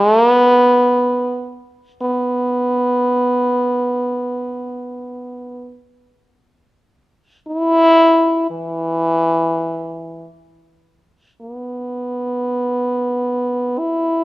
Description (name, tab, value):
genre	japanese traditional, Japanese chamber music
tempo	free time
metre	none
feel	none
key	unclear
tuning	A4 = 439 Hz
part	French horn with straight mute	solo	0.0-14.2 s	E3 to E4	-15 LUFS	equal	none
room	light reverb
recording	close, detailed microphones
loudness	-15 LUFS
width	side -18 dB against mid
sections	0.0-10.5 A section; 10.5-14.2 A section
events	none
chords	none